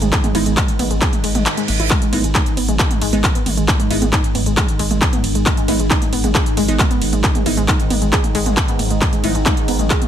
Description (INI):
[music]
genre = driving peak-time techno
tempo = 135 BPM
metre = 4/4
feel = straight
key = G# minor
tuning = A4 = 440 Hz
[part]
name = warbly dusty pluck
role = riff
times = 0.0-10.0 s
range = G#3 to G#4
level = -23 LUFS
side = equal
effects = chorus, tube saturation, sidechain pumping, digital delay
[part]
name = saturated sub bass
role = bass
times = 0.0-9.9 s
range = G#1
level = -21 LUFS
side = equal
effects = overdrive, sidechain pumping, low-pass filter
[part]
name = deep dark ambient pad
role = drone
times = 0.0-10.1 s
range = G#2 to D#3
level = -24 LUFS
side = right 1 dB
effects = chorus, built-in reverb, sidechain pumping
[part]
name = techno drum kit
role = drums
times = 0.0-10.1 s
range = handclaps, hi-hat, ride cymbal, toms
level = -20 LUFS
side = right 1 dB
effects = sidechain pumping on hats, sidechain pumping on toms, sidechain pumping on cymbals
[part]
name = electronic kick drum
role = drums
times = 0.1-10.0 s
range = none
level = -18 LUFS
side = equal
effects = none
[part]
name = wavetable chord stab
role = stabs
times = 0.3-9.3 s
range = G#3 to D#4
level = -24 LUFS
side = right 3 dB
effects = sidechain pumping, digital delay
[part]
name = reverse cymbal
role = sound effects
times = 1.2-1.9 s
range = none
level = -26 LUFS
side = right 6 dB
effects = none
[sound]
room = light reverb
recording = none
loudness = -14 LUFS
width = side -10 dB against mid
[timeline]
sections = 0.0-10.1 A section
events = reverse cymbal 1.2-1.9; kick drops out 1.5-1.9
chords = 0.0 G#m